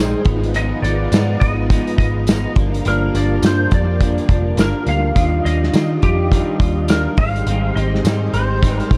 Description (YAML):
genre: indie pop, bedroom pop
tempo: 104 BPM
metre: 4/4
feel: swing 60% on 16ths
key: unclear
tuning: A4 = 440 Hz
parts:
  - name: clean lap steel guitar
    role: melody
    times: 0.0-8.9 s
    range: G4 to F5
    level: -27 LUFS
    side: equal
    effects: ensemble chorus, analog delay
  - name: mellow tonewheel organ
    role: accompaniment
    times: 0.0-9.0 s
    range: G3 to G5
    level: -29 LUFS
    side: equal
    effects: chorus vibrato, slow rotary speaker, analog delay
  - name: semi-hollow electric guitar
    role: accompaniment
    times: 0.0-9.0 s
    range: G2 to F4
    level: -26 LUFS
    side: equal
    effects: lush chorus, warbly pitch drift, analog delay
  - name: string machine, violins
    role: sustained chords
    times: 0.0-9.0 s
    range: D3 to G5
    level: -31 LUFS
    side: equal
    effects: none
  - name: vintage muted picked electric bass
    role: bass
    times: 0.0-9.0 s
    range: F1 to Eb3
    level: -22 LUFS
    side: equal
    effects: none
  - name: loose indie drum kit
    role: drums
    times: 0.2-9.0 s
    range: hi-hat, kick drum, snare drum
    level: -20 LUFS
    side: equal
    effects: analog delay
  - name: tambourine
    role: percussion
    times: 1.1-8.2 s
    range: none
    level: -38 LUFS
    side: equal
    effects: none
room: small room reverb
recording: echo-heavy mix, cassette tape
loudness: -17 LUFS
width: mono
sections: 0.0-9.0 A section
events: none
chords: 0.3 Abm6; 2.6 Gm7; 5.2 Ebmaj9; 7.2 Abmaj7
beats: | 0.54 1.12 1.70 2.27 | 2.85 3.43 4.01 4.58 | 5.16 5.74 6.32 6.89 | 7.47 8.05 8.62